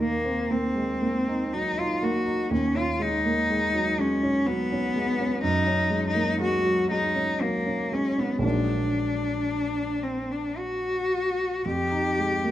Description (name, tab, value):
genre	classical, impressionist duo for cello and grand piano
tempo	54-63 BPM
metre	3/4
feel	rubato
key	Eb minor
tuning	A4 = 440 Hz
part	rich cello	melody	0.0-12.5 s	Bb3 to G4	-25 LUFS	left 1 dB	none
part	warm concert grand piano	accompaniment	0.0-12.5 s	Bb1 to Eb4	-27 LUFS	right 1 dB	none
room	moderate recital hall reverb, RT60 1.5 s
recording	close, detailed microphones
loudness	-23 LUFS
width	side -13 dB against mid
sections	0.0-12.5 A section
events	none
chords	0.0 Ebm6; 2.5 B69/D#; 5.4 Gbadd9; 8.4 Bbaug7; 11.7 Fm9